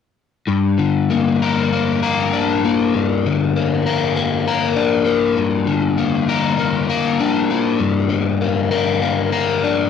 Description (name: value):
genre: rock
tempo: 99 BPM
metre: 4/4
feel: straight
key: G minor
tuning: A4 = 440 Hz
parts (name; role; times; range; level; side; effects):
- crunchy overdriven guitar; solo; 0.5-9.9 s; G2 to Bb4; -15 LUFS; left 5 dB; flanger
room: light reverb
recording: none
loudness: -16 LUFS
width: side -7 dB against mid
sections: 0.5-9.9 A section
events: none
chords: 0.5 Gm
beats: | 0.49 1.10 1.72 2.33 | 2.94 3.55 4.16 4.77 | 5.38 5.99 6.59 7.20 | 7.81 8.41 9.02 9.63